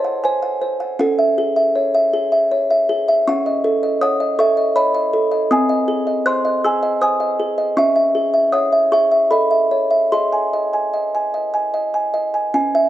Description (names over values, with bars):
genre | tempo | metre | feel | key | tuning
classical, lullaby for music box | 73-82 BPM | 3/4 | rubato | unclear | A4 = 440 Hz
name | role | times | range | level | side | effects
music box | solo | 0.0-12.9 s | B#3 to F#6 | -15 LUFS | equal | none
room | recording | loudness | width
light reverb | none | -15 LUFS | side -13 dB against mid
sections
0.0-12.5 A section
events
none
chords
0.0 G#7; 1.0 C#m; 3.3 D#m7b5/C#; 5.5 G#/B#; 7.8 C#m; 9.3 A; 10.1 G#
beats
0.24 | 1.00 1.76 2.52 | 3.27 4.02 4.76 | 5.51 6.26 7.02 | 7.77 8.53 9.31 | 10.12 10.94 11.74 | 12.55